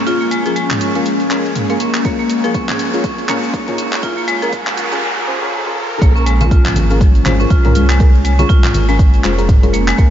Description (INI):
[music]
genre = afro house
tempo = 121 BPM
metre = 4/4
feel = swing 58% on 16ths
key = Bb minor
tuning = A4 = 441 Hz
[part]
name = ethereal airy pad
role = sustained chords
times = 0.0-10.1 s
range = Ab3 to Db4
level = -22 LUFS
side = left 1 dB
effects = ensemble chorus, built-in reverb, sidechain pumping
[part]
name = warm sub bass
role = bass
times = 0.0-10.1 s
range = F1 to C2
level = -15 LUFS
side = equal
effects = sidechain pumping, high-pass filter
[part]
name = riser and noise sweep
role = sound effects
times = 2.1-6.0 s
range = none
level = -26 LUFS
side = right 2 dB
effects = none
[part]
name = marimba with hard mallets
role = arpeggios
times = 0.1-10.1 s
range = F3 to Ab4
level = -20 LUFS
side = equal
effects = sidechain pumping, low-pass filter, ping-pong delay
[part]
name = deep mellow chord stab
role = stabs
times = 0.1-10.1 s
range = Db4 to C5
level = -21 LUFS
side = left 2 dB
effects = chorus, sidechain pumping, ping-pong delay
[part]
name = deep house drum kit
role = drums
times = 0.1-10.1 s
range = handclaps, hi-hat, shaker, toms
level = -22 LUFS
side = right 1 dB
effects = overdrive
[part]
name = electronic kick drum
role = drums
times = 2.0-10.1 s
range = none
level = -11 LUFS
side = equal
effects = overdrive
[part]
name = congas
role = percussion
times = 6.4-9.7 s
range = none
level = -22 LUFS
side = left 2 dB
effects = none
[sound]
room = moderate huge ambient reverb, RT60 6.1 s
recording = dreamy mix soaked in reverb, high-pass filter, nothing above 7.5 kHz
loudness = -12 LUFS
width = side -10 dB against mid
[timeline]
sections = 0.0-6.0 A section; 6.0-10.1 B section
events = build-up 0.0-6.0; filter sweep on marimba 0.0-6.0; filter sweep 0.0-6.0; riser 2.1-6.0; noise sweep 4.0-6.0; drop 6.0-10.1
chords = 0.0 Bbm7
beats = | 0.07 0.56 1.06 1.55 | 2.05 2.54 3.04 3.54 | 4.03 4.53 5.03 5.52 | 6.02 6.51 7.01 7.50 | 8.00 8.50 8.99 9.49 | 9.98